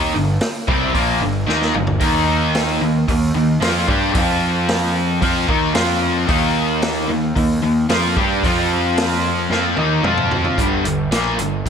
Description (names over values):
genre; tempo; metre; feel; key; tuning
hard rock; 112 BPM; 4/4; straight; unclear; A4 = 440 Hz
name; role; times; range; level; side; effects
cranked stack guitar; riff; 0.0-11.7 s; G2 to G4; -17 LUFS; equal; overdrive, lush chorus
fuzz picked electric bass; bass; 0.0-11.7 s; G1 to G2; -23 LUFS; equal; overdrive
raw garage drum kit; drums; 0.4-11.7 s; hi-hat, kick drum, snare drum, toms; -22 LUFS; equal; gated reverb
room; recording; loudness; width
moderate plate reverb, RT60 2.2 s; bright 1980s-style digital production; -15 LUFS; side -7 dB against mid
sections
0.0-10.6 A section; 10.6-11.7 B section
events
drum fill 1.5-2.0, 9.5-10.6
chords
0.0 Gm; 2.0 Eb5; 4.2 F5; 5.2 Eb5; 5.8 F5; 6.3 Eb5; 8.4 F5; 9.5 Eb5; 10.0 F5; 10.6 Gm